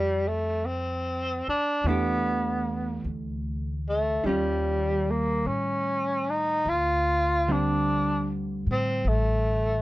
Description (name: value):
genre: jazz ballad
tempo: 50 BPM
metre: 4/4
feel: swing 69% on 8ths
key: unclear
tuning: A4 = 436 Hz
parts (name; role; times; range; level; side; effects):
- breathy tenor saxophone; melody; 0.0-9.8 s; G3 to F4; -26 LUFS; equal; none
- vintage hollow-body jazz guitar; accompaniment; 0.0-9.8 s; D3 to G4; -31 LUFS; right 1 dB; none
- upright bass; bass; 0.0-9.8 s; A1 to A2; -30 LUFS; equal; none
room: little or no reverb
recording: close, detailed microphones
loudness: -24 LUFS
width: side -17 dB against mid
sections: 0.0-9.8 A section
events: none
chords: 0.0 Bb69 (rootless); 1.9 Em7; 4.2 D#9; 6.7 D7sus4